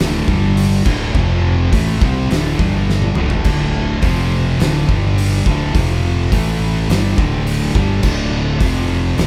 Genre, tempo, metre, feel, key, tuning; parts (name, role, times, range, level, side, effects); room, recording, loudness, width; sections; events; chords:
stoner and doom metal; 104 BPM; 4/4; straight; D minor; A4 = 439 Hz
high-gain distorted guitar; riff; 0.0-9.3 s; D2 to C4; -27 LUFS; equal; distortion
thick fuzz guitar; riff; 0.0-9.3 s; D2 to C4; -22 LUFS; equal; distortion
thick fuzz guitar; riff; 0.0-9.3 s; D2 to C4; -26 LUFS; equal; distortion
fuzz fingered electric bass; bass; 0.0-9.3 s; D1 to C2; -22 LUFS; equal; overdrive
oversized low-tuned drum kit; drums; 0.0-9.3 s; crash cymbal, hi-hat, kick drum, snare drum, toms; -21 LUFS; equal
light reverb; band playing live in one room; -16 LUFS; mono
0.0-9.3 A section
drum fill 2.9-3.5
0.0 D5; 0.3 G5; 0.9 D5; 1.1 F5; 1.7 D5; 2.6 G5; 3.2 D5; 4.0 F5; 4.6 D5; 4.9 G5; 5.5 D5; 5.8 F5; 6.3 A5; 6.9 D5; 8.6 F5